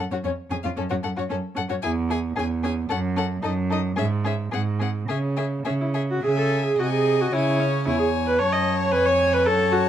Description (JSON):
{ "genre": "quick classical-period movement for string quartet", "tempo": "112 BPM", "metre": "2/4", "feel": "rubato", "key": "C# minor", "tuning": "A4 = 440 Hz", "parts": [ { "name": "rich violin", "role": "melody", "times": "0.0-9.9 s", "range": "A4 to A5", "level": "-30 LUFS", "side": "left 9 dB", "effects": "none" }, { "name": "rich violin", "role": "second line", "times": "0.0-9.9 s", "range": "C#4 to E5", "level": "-30 LUFS", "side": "left 5 dB", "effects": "none" }, { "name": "warm viola", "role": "accompaniment", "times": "0.0-9.9 s", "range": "B#3 to D#5", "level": "-24 LUFS", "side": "right 1 dB", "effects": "none" }, { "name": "rich cello", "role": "bass", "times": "0.0-9.9 s", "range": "E2 to C#3", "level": "-25 LUFS", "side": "right 3 dB", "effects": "none" } ], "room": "light reverb", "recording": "dark, warm production", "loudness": "-21 LUFS", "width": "side -10 dB against mid", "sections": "0.0-6.2 A section; 6.2-9.9 A section", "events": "none", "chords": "0.2 C#/E#; 0.8 F#5; 1.8 E; 2.4 C#m/E; 2.9 F#5; 3.4 D#m/F#; 4.0 C#m/G#; 4.5 G#7; 5.1 C#m; 6.8 G#/B#; 7.3 C#m; 8.4 F#m; 8.9 C#/E#", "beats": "0.25 | 0.78 1.30 | 1.82 2.36 | 2.89 3.43 | 3.97 4.52 | 5.08 5.66 | 6.23 6.78 | 7.33 7.86 | 8.39 8.93 | 9.46" }